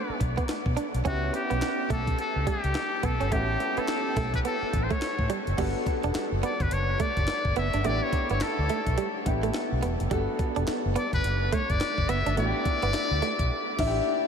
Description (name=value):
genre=R&B, new jack swing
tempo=106 BPM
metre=4/4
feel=swing 61% on 16ths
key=unclear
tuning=A4 = 438 Hz
part: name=trumpet with metal mute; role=melody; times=0.0-14.0 s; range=F#4 to E5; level=-30 LUFS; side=left 2 dB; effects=analog delay
part: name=clear concert grand piano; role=accompaniment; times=0.0-14.3 s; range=A3 to A4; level=-32 LUFS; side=left 1 dB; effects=wide subtle chorus
part: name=vintage muted fingered electric bass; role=bass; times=0.1-14.0 s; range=E1 to B2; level=-29 LUFS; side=equal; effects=none
part: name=direct-recorded clean electric guitar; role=riff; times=0.2-13.3 s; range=G3 to D4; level=-32 LUFS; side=right 5 dB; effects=wide subtle chorus
part: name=breakbeat sampler-style drum kit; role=drums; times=0.2-14.0 s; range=crash cymbal, handclaps, hi-hat, kick drum, snare drum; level=-32 LUFS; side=equal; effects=none
room=wet huge ambient reverb, RT60 9.3 s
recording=dreamy mix soaked in reverb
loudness=-24 LUFS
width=side -7 dB against mid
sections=0.0-5.6 A section; 5.6-14.3 B section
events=band accent 13.5-14.3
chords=0.0 Bm7; 1.1 C#m7b5; 3.3 A7; 5.6 Gmaj9; 12.4 A7sus4